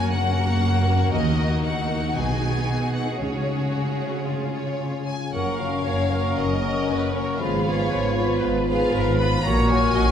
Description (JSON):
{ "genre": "classical, dramatic, fast romantic movement for symphony orchestra", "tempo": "117 BPM", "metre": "4/4", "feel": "rubato", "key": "F# major", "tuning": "A4 = 441 Hz", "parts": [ { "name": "warm symphonic violin section", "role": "melody", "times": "0.0-10.1 s", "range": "C#5 to Cb6", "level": "-30 LUFS", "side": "left 3 dB", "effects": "none" }, { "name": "rich symphonic violin section", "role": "second line", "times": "0.0-10.1 s", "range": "C#4 to C#5", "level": "-31 LUFS", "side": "left 1 dB", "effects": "none" }, { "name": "rich chamber viola section", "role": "accompaniment", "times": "0.0-10.0 s", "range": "G#3 to D#5", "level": "-30 LUFS", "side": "equal", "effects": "none" }, { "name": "concert harp", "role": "arpeggios", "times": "0.0-10.1 s", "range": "F#2 to D#5", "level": "-29 LUFS", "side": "left 6 dB", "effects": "none" }, { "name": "rich symphonic cello section", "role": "bass", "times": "0.0-10.1 s", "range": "D#2 to C#3", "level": "-26 LUFS", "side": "right 2 dB", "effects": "none" }, { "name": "rich symphonic double bass section", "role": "bass", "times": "1.1-10.1 s", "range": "F#1 to D#2", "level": "-27 LUFS", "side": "right 2 dB", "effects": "none" }, { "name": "clear clarinet", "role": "second line", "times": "5.3-10.1 s", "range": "A#4 to Cb5", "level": "-32 LUFS", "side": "equal", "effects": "none" }, { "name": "mellow silver concert flute", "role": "second line", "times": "5.3-10.1 s", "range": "Cb6 to C#6", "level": "-30 LUFS", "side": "left 2 dB", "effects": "none" }, { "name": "warm bassoon", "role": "accompaniment", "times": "5.3-10.1 s", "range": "F3 to F#3", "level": "-31 LUFS", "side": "right 2 dB", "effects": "none" }, { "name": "mellow French horn section", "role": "sustained chords", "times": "5.3-10.1 s", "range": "A#3 to F#4", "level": "-27 LUFS", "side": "left 2 dB", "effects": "none" } ], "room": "wet scoring stage reverb, RT60 1.8 s", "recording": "minimal, uncompressed stereo recording", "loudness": "-20 LUFS", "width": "side -8 dB against mid", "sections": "0.0-5.3 A section; 5.3-10.1 B section", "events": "none", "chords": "0.0 F#; 1.1 D#m; 2.2 G#m7/B; 3.2 C#sus4; 4.3 C#; 5.3 F#; 7.4 Fdim/Ab; 9.4 F#/A#", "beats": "0.13 0.63 | 1.14 1.65 2.16 2.68 | 3.22 3.75 4.29 4.82 | 5.34 5.86 6.38 6.90 | 7.41 7.92 8.43 8.94 | 9.44 9.94" }